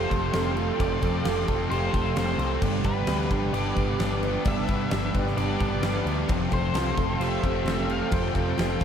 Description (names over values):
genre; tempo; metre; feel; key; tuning
rock, shoegaze and dream pop; 131 BPM; 4/4; straight; unclear; A4 = 443 Hz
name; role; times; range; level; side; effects
octave-fuzz lead guitar; melody; 0.0-8.8 s; B4 to G5; -34 LUFS; left 3 dB; distortion, analog delay
sweeping resonant pad; sustained chords; 0.0-8.8 s; F4 to D6; -36 LUFS; right 1 dB; chorus
picked twelve-string acoustic guitar; arpeggios; 0.0-8.8 s; G4 to D5; -34 LUFS; right 3 dB; wide subtle chorus, analog delay
distorted electric guitar; riff; 0.0-8.8 s; F2 to D4; -35 LUFS; equal; overdrive
overdriven electric guitar; riff; 0.0-8.8 s; G2 to A4; -32 LUFS; left 7 dB; lush chorus
overdriven semi-hollow guitar; riff; 0.0-8.8 s; F3 to G4; -32 LUFS; right 9 dB; reverse reverb
growling picked electric bass; bass; 0.0-8.8 s; F1 to G2; -29 LUFS; equal; overdrive
huge arena drum kit; drums; 0.1-8.8 s; crash cymbal, kick drum, snare drum; -29 LUFS; equal; none
room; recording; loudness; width
moderate church reverb, RT60 2.5 s; dreamy mix soaked in reverb; -23 LUFS; side -8 dB against mid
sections
0.0-8.8 A section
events
none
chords
0.0 Fadd9; 2.6 G; 6.3 Fadd9